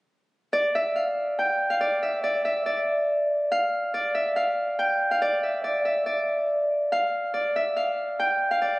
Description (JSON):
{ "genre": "hip hop", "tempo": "141 BPM", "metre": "4/4", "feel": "half-time", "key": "D minor", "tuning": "A4 = 439 Hz", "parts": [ { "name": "Celtic harp", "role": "solo", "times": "0.5-8.8 s", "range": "D5 to G5", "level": "-22 LUFS", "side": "equal", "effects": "tape echo" } ], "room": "light reverb", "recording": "recorded on a phone in the room, studio reverb, compression", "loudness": "-22 LUFS", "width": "side -22 dB against mid", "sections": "0.5-7.3 A section; 7.3-8.8 B section", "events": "none", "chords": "none" }